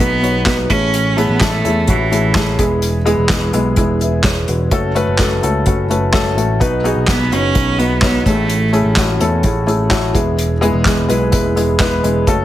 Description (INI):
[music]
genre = piano-driven pop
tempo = 127 BPM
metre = 4/4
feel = straight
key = E major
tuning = A4 = 439 Hz
[part]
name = rich cello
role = melody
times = 0.0-2.6, 7.1-9.2 s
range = E3 to C#4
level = -18 LUFS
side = right 2 dB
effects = none
[part]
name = felt-muted upright piano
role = accompaniment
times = 0.0-12.4 s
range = A2 to F#5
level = -17 LUFS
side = left 1 dB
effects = plate reverb
[part]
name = picked electric bass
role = bass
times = 0.0-12.4 s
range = E1 to E2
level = -18 LUFS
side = equal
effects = none
[part]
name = unplugged drum kit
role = drums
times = 0.2-12.4 s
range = handclaps, hi-hat, kick drum, snare drum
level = -18 LUFS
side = equal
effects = none
[sound]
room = moderate large studio reverb, RT60 0.8 s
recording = heavily compressed radio sound, multiband compression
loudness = -12 LUFS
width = side -13 dB against mid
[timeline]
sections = 0.0-12.4 A section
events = none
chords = 0.0 B; 0.7 Amaj7; 2.6 E; 4.7 F#m; 6.6 B; 8.3 Amaj7; 10.2 E